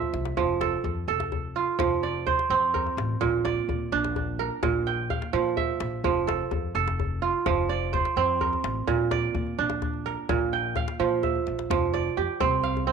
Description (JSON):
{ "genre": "west african traditional, West African string and xylophone music", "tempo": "85 BPM (dotted quarters)", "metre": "12/8", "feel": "straight", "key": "F major", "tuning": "A4 = 440 Hz", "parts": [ { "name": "kora", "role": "arpeggios", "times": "0.0-12.9 s", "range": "Bb2 to G5", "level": "-25 LUFS", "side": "right 7 dB", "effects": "tape echo" }, { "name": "upright bass", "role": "bass", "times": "0.0-12.9 s", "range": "F1 to Bb2", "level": "-32 LUFS", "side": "left 2 dB", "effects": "none" }, { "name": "djembe", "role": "percussion", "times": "0.0-12.9 s", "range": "none", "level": "-32 LUFS", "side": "left 6 dB", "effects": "none" } ], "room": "wet spring reverb, RT60 1.1 s, studio reverb", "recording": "1960s-style stereo with parts hard left and right", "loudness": "-24 LUFS", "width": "side -6 dB against mid", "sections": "0.0-11.7 A section; 11.7-12.9 B section", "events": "drum fill 0.0-0.4, 11.3-11.7", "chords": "0.4 F; 3.2 Bb; 6.0 F; 8.9 Bb; 11.7 F5" }